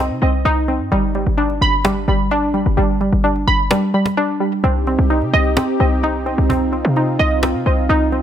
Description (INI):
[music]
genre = hip hop, trap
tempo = 129 BPM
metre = 4/4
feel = half-time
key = C harmonic minor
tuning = A4 = 441 Hz
[part]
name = glassy wavetable pluck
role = arpeggios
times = 0.0-8.2 s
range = G3 to B5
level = -17 LUFS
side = right 1 dB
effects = chorus, low-pass filter, analog delay
[part]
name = short 808-style bass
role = bass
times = 0.0-8.2 s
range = G1 to C3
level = -18 LUFS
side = equal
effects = none
[part]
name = cajon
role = drums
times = 0.2-8.2 s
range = none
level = -24 LUFS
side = equal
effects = analog delay
[part]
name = warm analog pad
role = sustained chords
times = 4.6-8.2 s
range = C4 to G4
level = -22 LUFS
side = right 2 dB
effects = chorus
[sound]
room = light reverb, digital ambience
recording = echo-heavy mix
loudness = -14 LUFS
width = side -10 dB against mid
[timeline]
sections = 0.0-8.2 A section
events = kick muted 3.7-4.6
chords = 0.0 Cm; 0.9 G; 4.6 Cm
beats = 0.45 | 0.92 1.38 1.85 2.31 | 2.78 3.24 3.71 4.17 | 4.64 5.10 5.57 6.03 | 6.50 6.96 7.43 7.89